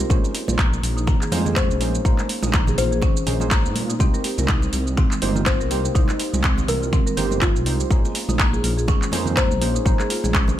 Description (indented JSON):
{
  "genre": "afro house",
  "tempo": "123 BPM",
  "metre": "4/4",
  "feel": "swing 57% on 16ths",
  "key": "unclear",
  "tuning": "A4 = 439 Hz",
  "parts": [
    { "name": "kalimba", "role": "melody", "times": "0.0-9.5 s", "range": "F4 to C5", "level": "-29 LUFS", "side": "left 4 dB", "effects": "dub echo" },
    { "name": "marimba with medium mallets", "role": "arpeggios", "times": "0.0-10.5 s", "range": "Bb3 to Bb4", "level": "-29 LUFS", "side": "equal", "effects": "sidechain pumping, dub echo" },
    { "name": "warm analog keys", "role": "stabs", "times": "0.0-10.6 s", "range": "Bb3 to C5", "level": "-30 LUFS", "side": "right 5 dB", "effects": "chorus, sidechain pumping, dub echo" },
    { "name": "dark detuned saw bass", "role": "bass", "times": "0.0-10.5 s", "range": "G1 to Bb2", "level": "-24 LUFS", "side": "equal", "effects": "tube saturation, sidechain pumping" },
    { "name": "afro-pop drum kit", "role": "drums", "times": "0.0-10.6 s", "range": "finger snaps, handclaps, hi-hat, shaker", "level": "-26 LUFS", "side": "right 1 dB", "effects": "studio ambience" },
    { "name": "electronic kick drum", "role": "drums", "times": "0.1-10.5 s", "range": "none", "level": "-20 LUFS", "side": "equal", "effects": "studio ambience" },
    { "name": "congas", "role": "percussion", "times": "0.1-10.6 s", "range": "none", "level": "-28 LUFS", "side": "right 3 dB", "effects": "none" }
  ],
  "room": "digital ambience",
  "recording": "none",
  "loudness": "-18 LUFS",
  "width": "side -12 dB against mid",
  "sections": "0.0-10.6 A section",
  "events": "none",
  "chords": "0.1 Bbm11; 4.0 Cm7; 7.9 Bbm11"
}